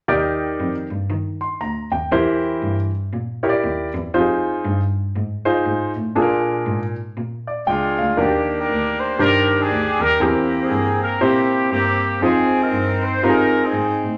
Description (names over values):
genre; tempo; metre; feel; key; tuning
uptempo gospel; 119 BPM; 4/4; swing 61% on 8ths; Eb major; A4 = 441 Hz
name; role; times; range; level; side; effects
warm upright piano; accompaniment; 0.1-13.9 s; Bb2 to C6; -22 LUFS; equal; none
rich cello; bass; 0.1-14.2 s; Db2 to Eb3; -28 LUFS; equal; none
mellow horn section; melody; 7.7-14.2 s; Ab3 to C5; -21 LUFS; equal; none
room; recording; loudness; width
wet large studio reverb, RT60 0.8 s; none; -20 LUFS; mono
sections
0.1-8.2 A section; 8.2-14.2 B section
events
none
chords
0.1 Ebmaj7; 2.1 C7/E; 4.1 Fm7; 6.2 Bb7; 8.2 Ebmaj7; 10.2 C7/E; 12.2 Fm7